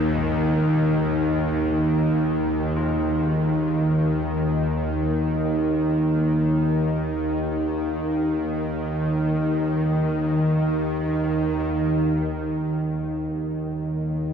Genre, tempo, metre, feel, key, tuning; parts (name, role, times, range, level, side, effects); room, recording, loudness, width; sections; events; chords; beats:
ambient; free time; A4 = 440 Hz
carillon bells; arpeggios; 0.0-9.1 s; Ab2 to F4; -39 LUFS; left 3 dB
bowed-like drone; drone; 0.0-14.3 s; Eb2 to Eb3; -21 LUFS; equal; built-in reverb
wet huge ambient reverb, RT60 8.6 s; -21 LUFS; side -7 dB against mid
0.0-11.7 A section; 11.7-14.3 B section
free time